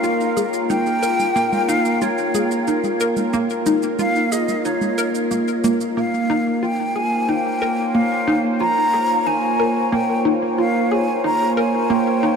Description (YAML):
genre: ambient, sequencer-driven space music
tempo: 91 BPM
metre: 4/4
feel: straight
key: Bb dorian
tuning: A4 = 440 Hz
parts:
  - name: breathy concert flute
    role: melody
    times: 0.0-12.4 s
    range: Db5 to Bb5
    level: -22 LUFS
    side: left 1 dB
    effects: ping-pong delay
  - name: sweeping resonant pad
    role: sustained chords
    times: 0.0-12.4 s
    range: Bb3 to Db5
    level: -21 LUFS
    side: equal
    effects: chorus
  - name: hollow square pluck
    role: riff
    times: 0.0-12.4 s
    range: Bb3 to Bb4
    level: -23 LUFS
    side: equal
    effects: lush chorus, ping-pong delay
  - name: shaker and congas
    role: percussion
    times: 0.0-5.9 s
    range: none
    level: -30 LUFS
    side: right 2 dB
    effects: ping-pong delay
room: wet huge ambient reverb, RT60 9.3 s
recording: none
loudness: -17 LUFS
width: side -6 dB against mid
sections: 0.0-6.0 A section; 6.0-12.4 B section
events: none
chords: 0.0 Bbm